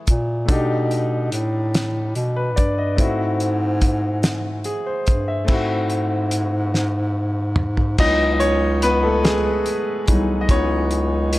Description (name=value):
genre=slow six-eight R&B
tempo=48 BPM (dotted quarters)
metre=6/8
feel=straight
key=C# minor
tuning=A4 = 440 Hz
part: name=clear concert grand piano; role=accompaniment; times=0.0-11.4 s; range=E3 to E5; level=-22 LUFS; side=left 1 dB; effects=none
part: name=breathy bass clarinet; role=bass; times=0.1-11.4 s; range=B#1 to B2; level=-21 LUFS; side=equal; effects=none
part: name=cloth-damped thuddy drum kit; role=drums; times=0.1-11.4 s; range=crash cymbal, hi-hat, kick drum, snare drum, toms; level=-20 LUFS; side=equal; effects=none
room=studio ambience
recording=none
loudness=-18 LUFS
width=side -17 dB against mid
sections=0.0-5.5 A section; 5.5-8.0 B section; 8.0-11.4 C section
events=drum fill 6.7-8.0; grand piano solo 8.0-11.4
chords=0.5 B7alt; 3.0 G#7b9b13; 8.0 C#m11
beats=| 0.49 1.74 | 2.99 4.24 | 5.49 6.74 | 7.99 9.24 | 10.49